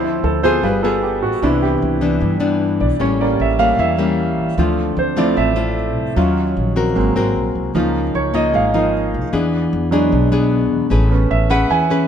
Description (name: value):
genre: bossa nova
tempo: 152 BPM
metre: 4/4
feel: straight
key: unclear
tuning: A4 = 440 Hz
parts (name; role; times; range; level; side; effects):
- clear grand piano; accompaniment; 0.0-12.1 s; E3 to G#5; -19 LUFS; right 4 dB; none
- nylon-string guitar; accompaniment; 0.0-12.1 s; G2 to B4; -18 LUFS; left 4 dB; none
- upright bass; bass; 0.0-12.1 s; G1 to G2; -21 LUFS; equal; none
room: moderate echo chamber reverb, RT60 2.0 s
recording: minimal, uncompressed stereo recording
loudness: -14 LUFS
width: side -8 dB against mid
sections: 0.0-12.1 A section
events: grand piano solo 0.0-12.1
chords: 0.0 Dm9; 0.6 G7b9; 1.4 Cmaj9; 3.0 A7b9; 4.6 Dm7; 6.2 D#m9; 7.0 G#9; 7.7 C#69; 9.3 E7; 10.9 Amaj9